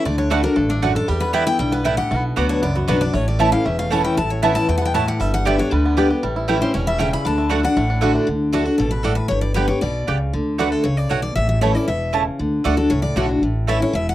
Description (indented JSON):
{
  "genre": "bluegrass",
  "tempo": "233 BPM",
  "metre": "4/4",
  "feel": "straight",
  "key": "D major",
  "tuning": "A4 = 440 Hz",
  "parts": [
    { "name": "bluegrass banjo", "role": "melody", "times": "0.0-8.3 s", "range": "G3 to G4", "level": "-29 LUFS", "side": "right 3 dB", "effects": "none" },
    { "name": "picked steel-string acoustic guitar", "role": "melody", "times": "0.0-14.1 s", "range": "D4 to B5", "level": "-24 LUFS", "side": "left 2 dB", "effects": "none" },
    { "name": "picked steel-string acoustic guitar", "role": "accompaniment", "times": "0.0-14.1 s", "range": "E2 to G4", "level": "-21 LUFS", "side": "left 2 dB", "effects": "none" },
    { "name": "upright bass", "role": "bass", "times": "0.1-14.1 s", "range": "E1 to E2", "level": "-22 LUFS", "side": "equal", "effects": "none" },
    { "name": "mandolin", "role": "stabs", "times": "0.3-13.8 s", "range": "A3 to A5", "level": "-22 LUFS", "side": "right 9 dB", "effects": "none" }
  ],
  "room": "light reverb",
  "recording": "dry, close 1970s-style studio recording",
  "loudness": "-17 LUFS",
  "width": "side -14 dB against mid",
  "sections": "0.0-8.3 A section; 8.3-14.1 B section",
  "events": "steel-string acoustic guitar solo 0.0-8.3",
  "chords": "0.1 D; 1.1 Em; 2.1 Bm; 3.1 A; 4.2 Aadd9; 5.2 G; 6.2 A7; 7.3 D; 9.3 G; 10.3 D; 11.4 A; 12.4 D; 13.4 A"
}